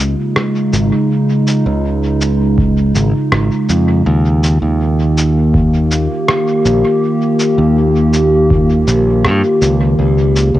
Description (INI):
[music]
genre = ambient dub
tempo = 81 BPM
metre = 4/4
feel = straight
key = Eb mixolydian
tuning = A4 = 439 Hz
[part]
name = warbly tape-like pad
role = sustained chords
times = 0.0-10.6 s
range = Db3 to G4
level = -14 LUFS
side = equal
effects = chorus, built-in reverb, cassette tape
[part]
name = modern bright fingered electric bass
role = bass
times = 0.0-10.6 s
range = Ab1 to G2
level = -13 LUFS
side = equal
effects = tube saturation
[part]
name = electronic rim click and cabasa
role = drums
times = 0.4-10.5 s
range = none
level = -19 LUFS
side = equal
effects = studio reverb, dub echo
[part]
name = electronic kick drum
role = drums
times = 2.6-8.7 s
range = none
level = -16 LUFS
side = equal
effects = studio reverb
[sound]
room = moderate spring reverb, RT60 2.5 s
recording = home recording on cassette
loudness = -11 LUFS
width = side -14 dB against mid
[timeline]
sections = 0.0-10.6 A section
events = none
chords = 0.0 Db; 4.1 Eb; 10.0 N.C.